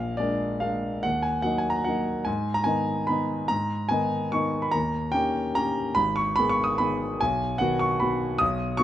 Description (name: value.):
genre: classical, piano waltz.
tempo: 147 BPM.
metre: 3/4.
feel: rubato.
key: unclear.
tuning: A4 = 441 Hz.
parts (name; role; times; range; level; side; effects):
warm grand piano; solo; 0.0-8.8 s; Ab1 to Eb6; -23 LUFS; equal; none.
room: light reverb.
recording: close, detailed microphones.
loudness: -23 LUFS.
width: side -12 dB against mid.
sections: 0.0-8.8 A section.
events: none.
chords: 0.0 Bb7; 1.0 Ebm; 2.3 Abm; 4.7 Eb7; 6.0 Abm; 7.2 B.